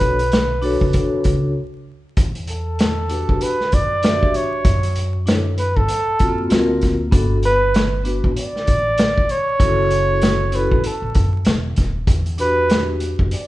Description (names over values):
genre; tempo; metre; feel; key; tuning
hip hop, jazz-hop; 97 BPM; 4/4; swing 58% on 16ths; unclear; A4 = 440 Hz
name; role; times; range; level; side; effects
breathy flugelhorn; melody; 0.0-13.5 s; A4 to D5; -20 LUFS; right 1 dB; none
vibraphone with soft mallets; accompaniment; 0.0-13.3 s; A#3 to E5; -22 LUFS; left 2 dB; none
upright bass; bass; 0.0-13.3 s; D#1 to G2; -22 LUFS; equal; none
vintage drum kit; drums; 0.0-13.5 s; hi-hat, kick drum, snare drum; -19 LUFS; equal; none
room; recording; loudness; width
light reverb; vinyl crackle, nothing above 10.3 kHz; -16 LUFS; side -16 dB against mid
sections
0.0-2.2 A section; 2.2-13.5 B section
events
break 1.6-2.2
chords
0.0 Bm9; 2.2 Em9; 4.7 F#m7; 6.5 D7alt; 7.1 Gmaj9; 9.6 F#m7; 12.1 Em9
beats
0.32 0.94 1.56 | 2.18 2.80 3.42 4.03 | 4.65 5.27 5.89 6.51 | 7.13 7.75 8.36 8.98 | 9.60 10.22 10.84 11.46 | 12.07 12.69 13.31